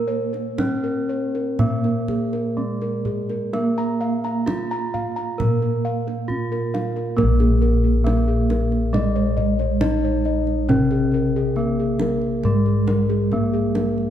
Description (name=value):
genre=Javanese gamelan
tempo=58-68 BPM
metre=4/4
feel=straight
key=Bb slendro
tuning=A4 = 440 Hz
part: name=gamelan-type bronze metallophone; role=melody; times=0.0-14.1 s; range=Ab3-25c to Bb4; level=-25 LUFS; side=right 1 dB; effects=slapback echo
part: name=gamelan-type bronze metallophone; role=accompaniment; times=0.0-14.1 s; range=Db3-45c to Bb3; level=-26 LUFS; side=right 2 dB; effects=none
part: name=gamelan-type bossed gongs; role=arpeggios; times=0.0-14.0 s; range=Ab4-25c to Bb5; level=-27 LUFS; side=left 1 dB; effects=none
part: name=gamelan-type bossed gongs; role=bass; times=0.0-14.1 s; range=Bb1 to Bb4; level=-23 LUFS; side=left 1 dB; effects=none
part: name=kendang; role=percussion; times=0.3-14.1 s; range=none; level=-28 LUFS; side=right 1 dB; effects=none
room=moderate scoring stage reverb, RT60 1.8 s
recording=dark, warm production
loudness=-19 LUFS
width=side -10 dB against mid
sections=0.0-7.2 A section; 7.2-14.1 B section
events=none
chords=none